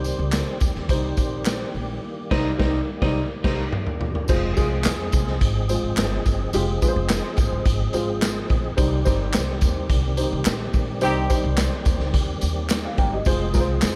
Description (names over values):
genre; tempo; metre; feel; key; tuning
uptempo 1960s-style soul; 107 BPM; 4/4; straight; F minor; A4 = 440 Hz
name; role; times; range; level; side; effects
dark upright piano; accompaniment; 0.0-14.0 s; G3 to G5; -29 LUFS; equal; none
percussive tonewheel organ; sustained chords; 0.0-14.0 s; Eb3 to Ab4; -34 LUFS; equal; fast rotary speaker, overdrive, chorus vibrato
upright bass; bass; 0.0-14.0 s; F1 to F2; -28 LUFS; equal; none
tambourine and handclaps; percussion; 0.0-14.0 s; none; -34 LUFS; equal; none
raw garage drum kit; drums; 0.1-14.0 s; crash cymbal, hi-hat, kick drum, snare drum, toms; -26 LUFS; equal; none
vintage hollow-body jazz guitar; riff; 2.3-3.6 s; G3 to Eb4; -32 LUFS; equal; none
warm horn section; second line; 11.0-11.4 s; C4 to G4; -27 LUFS; equal; none
room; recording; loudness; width
little or no reverb; none; -22 LUFS; mono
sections
0.0-4.3 A section; 4.3-14.0 B section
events
drum fill 2.0-4.3; band accent 2.0-4.3, 11.0-13.3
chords
0.0 Cm; 4.3 Fm; 8.8 Cm; 13.3 Fm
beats
0.33 0.90 1.46 | 2.03 2.59 3.16 3.72 | 4.29 4.85 5.41 5.97 | 6.54 7.10 7.66 8.22 | 8.78 9.34 9.90 10.46 | 11.02 11.58 12.14 12.70 | 13.27 13.83